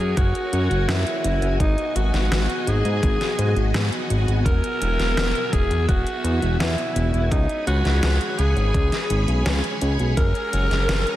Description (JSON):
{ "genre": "synthwave", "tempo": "84 BPM", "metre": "4/4", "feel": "straight", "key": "G# minor", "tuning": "A4 = 439 Hz", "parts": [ { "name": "raspy alto saxophone", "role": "melody", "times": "0.0-11.2 s", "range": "D#4 to A#4", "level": "-26 LUFS", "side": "equal", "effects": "digital delay" }, { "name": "string machine, full ensemble", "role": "sustained chords", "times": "0.0-11.2 s", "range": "B3 to B5", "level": "-28 LUFS", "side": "equal", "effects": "ensemble chorus, vintage 12-bit sampler grit, sidechain pumping" }, { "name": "fat analog bass", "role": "bass", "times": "0.0-11.0 s", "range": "E1 to G#2", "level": "-21 LUFS", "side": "equal", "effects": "none" }, { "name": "electronic kick drum", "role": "drums", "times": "0.2-10.3 s", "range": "none", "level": "-22 LUFS", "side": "equal", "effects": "overdrive" }, { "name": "pop drum kit", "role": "drums", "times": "0.2-11.2 s", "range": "hi-hat, snare drum", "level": "-28 LUFS", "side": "equal", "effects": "overdrive, slapback echo" } ], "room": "moderate recital hall reverb, RT60 1.7 s", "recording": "big arena sound", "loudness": "-19 LUFS", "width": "side -14 dB against mid", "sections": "0.0-11.2 A section", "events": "none", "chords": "0.0 F#add9; 1.6 G#m7; 4.5 Eadd9; 7.3 C#5; 10.2 F#add9", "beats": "0.17 0.89 | 1.60 2.31 3.03 3.74 | 4.46 5.17 5.89 6.60 | 7.31 8.03 8.74 9.46 | 10.17 10.89" }